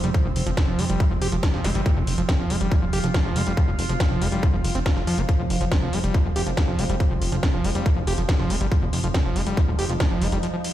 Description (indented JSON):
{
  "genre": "psychedelic trance",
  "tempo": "140 BPM",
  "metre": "4/4",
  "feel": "straight",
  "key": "F minor",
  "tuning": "A4 = 440 Hz",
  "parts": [
    { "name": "evolving wavetable pad", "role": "sustained chords", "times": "0.0-10.7 s", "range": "F3 to F4", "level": "-30 LUFS", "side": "right 2 dB", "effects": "phaser, built-in reverb, sidechain pumping" },
    { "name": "overdriven acid bass", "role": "riff", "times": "0.0-10.6 s", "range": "F3 to G4", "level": "-28 LUFS", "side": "right 1 dB", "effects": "distortion, auto-pan, sidechain pumping, dub echo" },
    { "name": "plucky analog bass", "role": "bass", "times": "0.0-10.4 s", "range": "Eb1 to F2", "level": "-25 LUFS", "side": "equal", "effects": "none" },
    { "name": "techno drum kit", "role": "drums", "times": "0.0-10.7 s", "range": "hi-hat, snare drum", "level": "-30 LUFS", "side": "left 1 dB", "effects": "none" },
    { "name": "impact and zap", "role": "sound effects", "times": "1.6-1.8 s", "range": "none", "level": "-35 LUFS", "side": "right 1 dB", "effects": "none" },
    { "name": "electronic kick drum", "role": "drums", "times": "0.1-10.1 s", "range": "none", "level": "-20 LUFS", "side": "equal", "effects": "overdrive" }
  ],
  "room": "little or no reverb",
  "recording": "played on a big sound system in a bare room, large studio reverb",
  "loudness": "-20 LUFS",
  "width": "side -13 dB against mid",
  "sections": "0.0-10.7 A section",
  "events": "break 10.4-10.7",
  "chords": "0.0 F5"
}